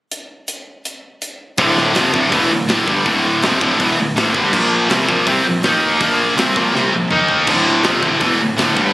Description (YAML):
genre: heavy metal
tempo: 163 BPM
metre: 4/4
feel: straight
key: D phrygian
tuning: A4 = 442 Hz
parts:
  - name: tight metal drum kit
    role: drums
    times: 0.1-8.9 s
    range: crash cymbal, hi-hat, kick drum, snare drum, toms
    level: -22 LUFS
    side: equal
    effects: none
  - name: distorted electric guitar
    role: riff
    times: 1.6-8.9 s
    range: D2 to Eb4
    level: -16 LUFS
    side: left 2 dB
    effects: overdrive
  - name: distorted electric guitar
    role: riff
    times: 1.6-8.9 s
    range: D2 to Eb4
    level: -22 LUFS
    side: right 1 dB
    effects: none
  - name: scooped high-gain guitar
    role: riff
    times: 1.6-8.9 s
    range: D2 to Eb4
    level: -20 LUFS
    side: right 4 dB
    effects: distortion
  - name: growling picked electric bass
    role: bass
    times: 1.6-8.9 s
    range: D1 to Eb2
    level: -24 LUFS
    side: equal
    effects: overdrive
room: little or no reverb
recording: recorded on a phone in the room, club reverb, compression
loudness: -13 LUFS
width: side -17 dB against mid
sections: 0.1-1.6 A section; 1.6-8.9 B section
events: drum fill 6.8-7.5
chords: 0.1 N.C.; 1.6 Dm; 4.5 Bb5; 5.6 Eb5; 6.0 Bb5; 7.1 Eb5; 7.5 Dm